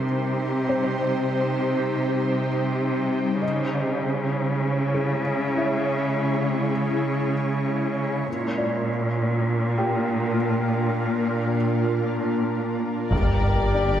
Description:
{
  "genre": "cinematic, hybrid orchestral and electronic film score",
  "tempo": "99 BPM",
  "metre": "4/4",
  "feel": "straight",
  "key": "unclear",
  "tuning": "A4 = 441 Hz",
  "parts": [
    { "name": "ethereal airy pad", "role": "sustained chords", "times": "0.0-14.0 s", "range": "G3 to D5", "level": "-26 LUFS", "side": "left 1 dB", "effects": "ensemble chorus, built-in reverb, phaser" },
    { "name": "warm studio cello section", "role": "bass", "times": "0.0-14.0 s", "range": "G2 to C#3", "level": "-24 LUFS", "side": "right 1 dB", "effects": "none" },
    { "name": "felt-muted upright piano", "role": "texture", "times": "0.0-14.0 s", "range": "Bb3 to G5", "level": "-32 LUFS", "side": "left 2 dB", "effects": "digital delay" },
    { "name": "warm symphonic violin section", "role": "melody", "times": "13.1-14.0 s", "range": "D5", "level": "-33 LUFS", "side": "left 4 dB", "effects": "none" },
    { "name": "rich symphonic violin section", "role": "second line", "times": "13.1-14.0 s", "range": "D5", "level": "-32 LUFS", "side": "left 5 dB", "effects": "none" },
    { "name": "rich symphonic viola section", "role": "accompaniment", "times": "13.1-14.0 s", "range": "Bb4", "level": "-32 LUFS", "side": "left 1 dB", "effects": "none" },
    { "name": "warm French horn section", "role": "sustained chords", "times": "13.1-14.0 s", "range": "G4", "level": "-26 LUFS", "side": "left 4 dB", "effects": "none" },
    { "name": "rubbery square bass", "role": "riff", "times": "13.1-14.0 s", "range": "G2", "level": "-28 LUFS", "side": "right 1 dB", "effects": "none" },
    { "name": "warm studio double bass section", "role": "bass", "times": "13.1-14.0 s", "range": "G1", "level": "-28 LUFS", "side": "right 2 dB", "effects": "none" },
    { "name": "wide detuned saw bass", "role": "bass", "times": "13.1-14.0 s", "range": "G1", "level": "-27 LUFS", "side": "equal", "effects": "chorus" },
    { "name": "taiko ensemble", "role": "drums", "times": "13.1-14.0 s", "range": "none", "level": "-27 LUFS", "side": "equal", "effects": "none" },
    { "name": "sub drop", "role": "sound effects", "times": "13.1-14.0 s", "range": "none", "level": "-29 LUFS", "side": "equal", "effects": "none" }
  ],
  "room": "moderate scoring stage reverb, RT60 1.7 s",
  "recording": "none",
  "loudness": "-21 LUFS",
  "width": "side -10 dB against mid",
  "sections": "0.0-13.1 A section",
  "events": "build-up 0.0-13.1; impact 13.1-14.0",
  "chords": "0.0 Cm; 3.4 C#m; 8.3 Bb; 13.1 Gm"
}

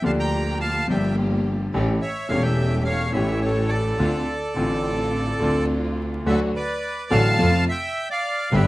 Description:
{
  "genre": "tango",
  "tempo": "106 BPM",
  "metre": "4/4",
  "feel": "rubato",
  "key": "D minor",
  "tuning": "A4 = 440 Hz",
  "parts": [
    { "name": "bandoneon", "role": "melody", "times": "0.0-8.7 s", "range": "A4 to Bb5", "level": "-25 LUFS", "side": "right 1 dB", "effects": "none" },
    { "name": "warm concert grand piano", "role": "accompaniment", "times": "0.0-8.7 s", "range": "E1 to G4", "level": "-23 LUFS", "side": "left 1 dB", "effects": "none" },
    { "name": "dark studio string section", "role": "stabs", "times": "0.0-8.7 s", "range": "A3 to G4", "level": "-30 LUFS", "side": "equal", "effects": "none" },
    { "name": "clear double bass", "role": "bass", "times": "0.0-8.7 s", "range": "E1 to F2", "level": "-25 LUFS", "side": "equal", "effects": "none" }
  ],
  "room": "wet studio reverb, RT60 0.6 s",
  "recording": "rough home demo mix, vinyl crackle",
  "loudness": "-20 LUFS",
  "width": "side -18 dB against mid",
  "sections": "0.0-6.3 A section; 6.3-8.7 B section",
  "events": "none",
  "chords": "0.0 Gm7; 1.7 A7; 4.0 Dm7; 6.3 D; 7.4 F"
}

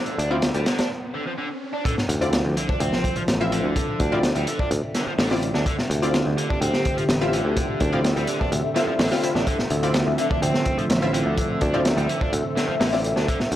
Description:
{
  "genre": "breakbeat, breaks",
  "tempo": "126 BPM",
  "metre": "4/4",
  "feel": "straight",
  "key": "D minor",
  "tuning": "A4 = 440 Hz",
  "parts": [
    { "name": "phased analog pad", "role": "sustained chords", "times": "0.0-13.6 s", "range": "D3 to E5", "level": "-27 LUFS", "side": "equal", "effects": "phaser, chorus, sidechain pumping" },
    { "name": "biting overdriven guitar", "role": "riff", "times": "0.0-13.4 s", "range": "D3 to D4", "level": "-29 LUFS", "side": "right 1 dB", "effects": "analog delay" },
    { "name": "orchestra-hit-like synth stab", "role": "stabs", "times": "0.0-13.0 s", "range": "C4 to F5", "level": "-28 LUFS", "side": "left 1 dB", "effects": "built-in reverb, analog delay" },
    { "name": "riser and sub drop", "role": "sound effects", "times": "0.9-3.8 s", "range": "none", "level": "-35 LUFS", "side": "equal", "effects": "none" },
    { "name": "crunchy breakbeat drum kit", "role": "drums", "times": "0.1-13.6 s", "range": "hi-hat, kick drum, snare drum", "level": "-24 LUFS", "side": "equal", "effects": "none" },
    { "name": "picked electric bass", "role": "bass", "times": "0.2-13.6 s", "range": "A1 to D2", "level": "-25 LUFS", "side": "equal", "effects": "tube saturation" }
  ],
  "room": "light reverb",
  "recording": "dry, gritty hardware recording",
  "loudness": "-20 LUFS",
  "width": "side -12 dB against mid",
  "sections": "0.0-1.9 A section; 1.9-13.6 B section",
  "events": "riser 0.9-1.9; break 0.9-1.9; drop 1.9-13.6; impact 1.9-3.8",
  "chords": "0.0 Dm9"
}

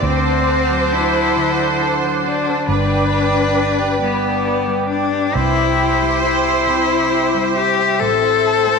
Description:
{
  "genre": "six-eight pop ballad",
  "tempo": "45 BPM (dotted quarters)",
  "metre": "6/8",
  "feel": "straight",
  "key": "C major",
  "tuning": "A4 = 439 Hz",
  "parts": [
    { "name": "warm studio violin section", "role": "second line", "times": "0.0-8.8 s", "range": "B4 to C5", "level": "-21 LUFS", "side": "right 4 dB", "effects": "none" },
    { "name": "clean electric guitar", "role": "accompaniment", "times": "0.0-8.8 s", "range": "G2 to A4", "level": "-24 LUFS", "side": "right 2 dB", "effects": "double-tracked left and right" },
    { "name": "warm analog pad", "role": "sustained chords", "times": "0.0-8.8 s", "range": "C4 to E6", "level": "-23 LUFS", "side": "right 4 dB", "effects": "chorus" },
    { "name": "vintage muted fingered electric bass", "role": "bass", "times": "0.0-8.8 s", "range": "G1 to D2", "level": "-24 LUFS", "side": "right 3 dB", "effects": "transformer saturation" },
    { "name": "clear cello", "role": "melody", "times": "0.1-8.8 s", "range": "B3 to A4", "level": "-17 LUFS", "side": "left 8 dB", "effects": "none" }
  ],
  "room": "wet echo chamber reverb, RT60 2.3 s",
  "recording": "none",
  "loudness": "-14 LUFS",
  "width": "side -4 dB against mid",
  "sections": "0.0-8.8 A section",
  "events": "none",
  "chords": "0.0 D7; 2.7 G; 5.3 Cadd9; 8.0 Am"
}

